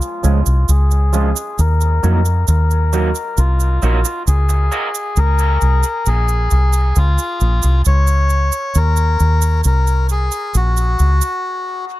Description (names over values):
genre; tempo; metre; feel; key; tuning
dub reggae; 67 BPM; 4/4; straight; unclear; A4 = 440 Hz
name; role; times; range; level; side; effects
melodica; melody; 0.0-11.9 s; F4 to Db5; -21 LUFS; left 2 dB; low-pass filter, dub echo
cabasa; percussion; 0.0-11.4 s; none; -25 LUFS; right 15 dB; high-pass filter on perc
electric guitar through a small old amp; accompaniment; 0.2-4.9 s; F3 to Gb4; -25 LUFS; right 5 dB; wide subtle chorus, high-pass filter, low-pass filter, dub echo
deep dub fingered electric bass; bass; 0.2-11.2 s; Bb1 to F2; -13 LUFS; equal; none
room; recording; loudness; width
little or no reverb; none; -13 LUFS; side -16 dB against mid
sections
0.0-12.0 A section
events
filter sweep 0.0-12.0; stop 11.4-12.0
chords
0.0 Db; 1.6 Ebm; 5.2 Db; 8.7 Ebm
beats
0.68 | 1.58 2.48 3.37 4.27 | 5.16 6.06 6.96 7.85 | 8.75 9.64 10.54 11.44